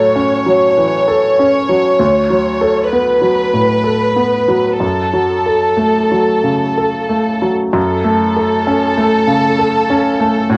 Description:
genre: neoclassical piano and strings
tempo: 63 BPM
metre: 3/4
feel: uneven beats, rubato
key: F# minor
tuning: A4 = 440 Hz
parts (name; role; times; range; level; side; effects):
- rich chamber violin section; melody; 0.0-10.6 s; F#4 to C#5; -17 LUFS; equal; cassette tape, plate reverb
- bright upright piano; accompaniment; 0.0-10.6 s; D2 to A4; -16 LUFS; equal; cassette tape
room: moderate booth ambience, RT60 0.2 s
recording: home recording on cassette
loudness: -14 LUFS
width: mono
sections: 0.0-7.8 A section; 7.8-10.6 A section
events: none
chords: 0.0 A6; 2.0 D6; 4.8 F#m

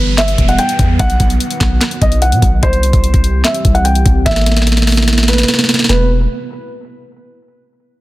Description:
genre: hip hop, trap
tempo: 147 BPM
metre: 4/4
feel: half-time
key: E harmonic minor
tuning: A4 = 439 Hz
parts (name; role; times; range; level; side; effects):
- felt-muted upright piano; melody; 0.0-6.1 s; B4 to G5; -18 LUFS; equal; low-pass filter, tape echo
- dark analog pad; sustained chords; 0.0-6.1 s; C3 to G4; -21 LUFS; right 2 dB; chorus, low-pass filter
- long sustained 808-style bass; bass; 0.0-6.3 s; E1 to B2; -13 LUFS; equal; none
- downlifter; sound effects; 0.0-2.6 s; none; -26 LUFS; right 3 dB; none
- trap drum kit; drums; 0.2-6.0 s; handclaps, hi-hat, kick drum, snare drum; -14 LUFS; equal; none
room: little or no reverb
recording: dense, heavily limited modern master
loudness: -10 LUFS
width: side -17 dB against mid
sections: 0.0-5.9 A section; 5.9-7.5 B section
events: filter sweep 0.0-5.9; drum fill 4.3-5.9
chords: 0.0 Em; 1.0 B; 2.6 C; 4.3 Amadd9; 5.9 Emadd9

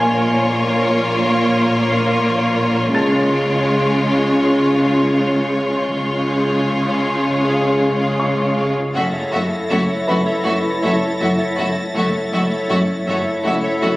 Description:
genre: cinematic, suspense film score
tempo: 80 BPM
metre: 4/4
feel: straight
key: unclear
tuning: A4 = 440 Hz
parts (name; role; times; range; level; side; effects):
- clear studio violin section; melody; 0.0-13.9 s; C#5 to E5; -25 LUFS; left 1 dB; none
- clear studio violin section; second line; 0.0-13.9 s; E#4 to F#4; -23 LUFS; left 1 dB; none
- rich studio viola section; accompaniment; 0.0-13.9 s; G#3 to A#3; -22 LUFS; equal; none
- pulsing gated texture; sustained chords; 0.0-14.0 s; E#4 to E#5; -23 LUFS; equal; chorus, built-in reverb
- dark studio cello section; bass; 0.0-13.9 s; F#2 to C#3; -20 LUFS; equal; none
- rich studio double bass section; bass; 0.0-13.9 s; F#1 to C#2; -28 LUFS; equal; none
- felt-muted upright piano; texture; 0.0-14.0 s; B4 to A6; -26 LUFS; equal; none
- rich studio violin section; texture; 3.0-14.0 s; C#6 to A#6; -31 LUFS; equal; none
- warm French horn section; sustained chords; 8.9-14.0 s; A3 to E4; -24 LUFS; left 1 dB; none
room: wet scoring stage reverb, RT60 1.6 s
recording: recorded on a phone in the room, club reverb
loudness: -15 LUFS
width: side -18 dB against mid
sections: 0.0-8.9 A section; 8.9-14.0 B section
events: none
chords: 0.0 A#m; 2.9 C#; 8.9 F#m7

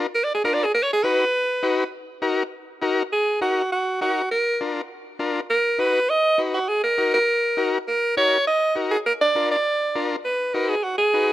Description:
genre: latin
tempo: 202 BPM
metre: 4/4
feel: straight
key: Eb harmonic minor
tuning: A4 = 445 Hz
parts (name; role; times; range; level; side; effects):
- combo organ; accompaniment; 0.0-11.3 s; D4 to B4; -25 LUFS; left 3 dB; none
- edgy alto saxophone; melody; 0.2-11.3 s; Gb4 to Eb5; -20 LUFS; right 1 dB; none
room: light reverb, studio reverb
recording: rough home demo mix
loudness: -19 LUFS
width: side -14 dB against mid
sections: 0.0-3.1 A section; 3.1-11.3 B section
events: alto saxophone solo 0.0-3.1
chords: 0.0 Bb; 0.7 B; 1.9 Ebm; 4.3 Bb; 5.5 B; 6.7 Ebm; 9.1 Bb; 10.2 B

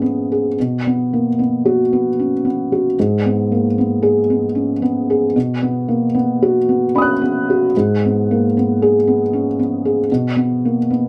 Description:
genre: neoclassical minimalist piano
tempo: 75 BPM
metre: 3/4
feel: rubato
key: G# minor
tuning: A4 = 441 Hz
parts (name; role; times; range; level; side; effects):
- felt-muted upright piano; solo; 0.0-11.1 s; G#2 to F#6; -17 LUFS; equal; none
room: light reverb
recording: none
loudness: -17 LUFS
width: mono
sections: 0.0-11.1 A section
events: none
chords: 0.0 G#m; 0.6 B5; 3.0 G#m; 5.3 B; 7.7 G#m; 10.1 B5

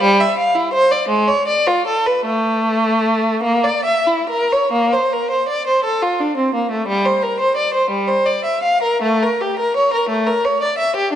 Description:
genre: classical, baroque-style suite movement for unaccompanied violin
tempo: 43-60 BPM (dotted quarters)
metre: 6/8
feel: rubato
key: unclear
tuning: A4 = 444 Hz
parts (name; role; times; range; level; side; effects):
- rich violin; solo; 0.0-11.2 s; G3 to F5; -15 LUFS; equal; none
room: moderate concert hall reverb, RT60 2.2 s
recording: dark, warm production, nothing above 10.4 kHz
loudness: -15 LUFS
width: side -10 dB against mid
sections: 0.0-4.7 A section; 4.7-11.2 B section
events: none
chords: none

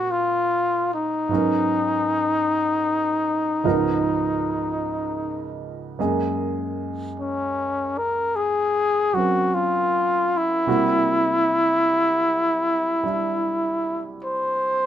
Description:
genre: jazz ballad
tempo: 51 BPM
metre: 4/4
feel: swing 69% on 8ths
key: unclear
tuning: A4 = 440 Hz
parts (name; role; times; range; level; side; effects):
- breathy trumpet; melody; 0.0-14.9 s; Db4 to C5; -20 LUFS; left 1 dB; none
- warm concert grand piano; accompaniment; 0.0-14.9 s; Db2 to Eb5; -27 LUFS; right 4 dB; none
room: moderate club reverb, RT60 0.8 s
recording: minimal, uncompressed stereo recording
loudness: -20 LUFS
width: side -10 dB against mid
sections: 0.0-14.9 A section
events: none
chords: 0.0 Bbm9; 1.3 Abm11; 3.6 Db13; 6.0 Gb69; 10.7 C7#11

